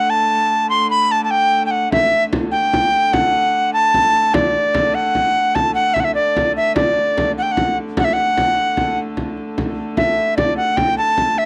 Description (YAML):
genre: medieval dance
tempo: 99 BPM (dotted quarters)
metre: 6/8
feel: straight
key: D major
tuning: A4 = 440 Hz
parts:
  - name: breathy bright alto recorder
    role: melody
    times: 0.0-11.5 s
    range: D5 to C6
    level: -17 LUFS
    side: equal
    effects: cassette tape
  - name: warm hurdy-gurdy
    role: drone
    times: 0.0-11.5 s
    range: D3 to A3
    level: -29 LUFS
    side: equal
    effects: cassette tape
  - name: frame drum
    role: percussion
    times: 1.9-11.4 s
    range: none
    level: -24 LUFS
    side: equal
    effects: none
room: moderate studio reverb, RT60 0.5 s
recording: home recording on cassette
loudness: -17 LUFS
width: mono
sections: 0.0-6.8 A section; 6.8-11.5 B section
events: none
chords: none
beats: 0.10 | 0.70 1.31 | 1.92 2.52 | 3.13 3.74 | 4.34 4.95 | 5.55 6.16 | 6.76 7.36 | 7.97 8.57 | 9.17 9.78 | 10.38 10.98